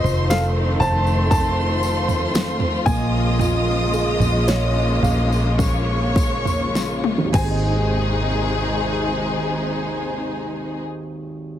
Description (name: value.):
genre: pop ballad.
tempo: 49-60 BPM.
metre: 4/4.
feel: straight.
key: Ab major.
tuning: A4 = 440 Hz.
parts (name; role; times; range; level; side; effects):
warm baby grand piano; melody; 0.0-10.8 s; Eb5 to A5; -26 LUFS; equal; ping-pong delay.
warm studio violin section; second line; 0.0-10.8 s; Eb4 to Eb6; -27 LUFS; equal; none.
dark upright piano; accompaniment; 0.0-11.6 s; Ab1 to F5; -27 LUFS; right 3 dB; none.
clear studio string section; sustained chords; 0.0-10.8 s; C3 to Ab4; -24 LUFS; left 2 dB; none.
vintage muted fingered electric bass; bass; 0.0-10.8 s; F1 to Bb1; -22 LUFS; equal; none.
pop drum kit; drums; 0.0-7.6 s; crash cymbal, kick drum, snare drum, toms; -22 LUFS; equal; none.
tambourine; percussion; 0.1-8.5 s; none; -36 LUFS; left 9 dB; none.
room: light reverb, studio ambience.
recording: heavily compressed radio sound, multiband compression.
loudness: -18 LUFS.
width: side -11 dB against mid.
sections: 0.0-7.9 A section; 7.9-11.6 B section.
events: slowing down 0.0-7.9; drum fill 6.7-7.9.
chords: 0.0 F7; 2.9 Bbm7; 7.3 Ab.